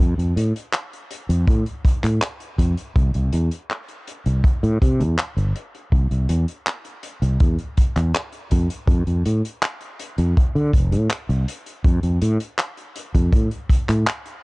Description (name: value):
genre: vaporwave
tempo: 81 BPM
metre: 4/4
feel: straight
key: unclear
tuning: A4 = 440 Hz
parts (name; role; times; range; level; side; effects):
- fretless electric bass; bass; 0.0-14.0 s; F1 to D3; -19 LUFS; equal; none
- loose indie drum kit; drums; 0.0-14.4 s; handclaps, hi-hat; -28 LUFS; equal; vintage 12-bit sampler grit
- kick drum; drums; 1.5-13.8 s; none; -18 LUFS; equal; vintage 12-bit sampler grit
room: little or no reverb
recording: dark, warm production, cassette tape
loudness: -18 LUFS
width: side -27 dB against mid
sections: 0.0-14.4 A section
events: none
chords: none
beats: | 0.00 0.74 1.48 2.22 | 2.96 3.70 4.44 5.18 | 5.92 6.66 7.41 8.15 | 8.89 9.63 10.37 11.11 | 11.85 12.59 13.33 14.07